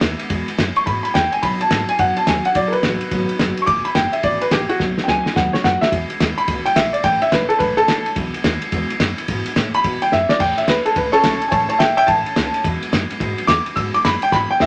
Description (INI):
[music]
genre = rockabilly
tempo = 214 BPM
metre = 4/4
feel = swing 63% on 8ths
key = E major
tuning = A4 = 440 Hz
[part]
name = warm upright piano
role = melody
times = 0.0-14.7 s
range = C#4 to E6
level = -19 LUFS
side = equal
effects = none
[part]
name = picked steel-string acoustic guitar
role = accompaniment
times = 0.0-14.7 s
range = E2 to G#4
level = -30 LUFS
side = equal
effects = none
[part]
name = upright bass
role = bass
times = 0.0-14.7 s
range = E1 to B2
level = -31 LUFS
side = equal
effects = none
[part]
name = cloth-damped thuddy drum kit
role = drums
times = 0.0-14.7 s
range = crash cymbal, kick drum, ride cymbal, snare drum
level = -23 LUFS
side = equal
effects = none
[sound]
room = moderate studio reverb, RT60 0.6 s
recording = none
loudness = -18 LUFS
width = mono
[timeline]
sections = 0.0-5.9 A section; 5.9-14.7 B section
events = drum fill 4.8-5.9, 10.1, 14.3-14.7; upright piano solo 5.9-14.7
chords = 0.0 E; 1.4 B; 3.7 E; 4.8 B; 5.9 E; 7.0 A; 8.2 E; 10.4 A; 12.6 E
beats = 0.02 | 0.30 0.58 0.86 1.15 | 1.43 1.71 1.99 2.27 | 2.55 2.83 3.12 3.40 | 3.68 3.96 4.24 4.52 | 4.80 5.08 5.36 5.64 | 5.92 6.21 6.49 6.77 | 7.05 7.33 7.61 7.89 | 8.17 8.45 8.73 9.01 | 9.29 9.57 9.85 10.13 | 10.41 10.69 10.97 11.25 | 11.53 11.81 12.09 12.37 | 12.65 12.93 13.21 13.49 | 13.77 14.05 14.33 14.61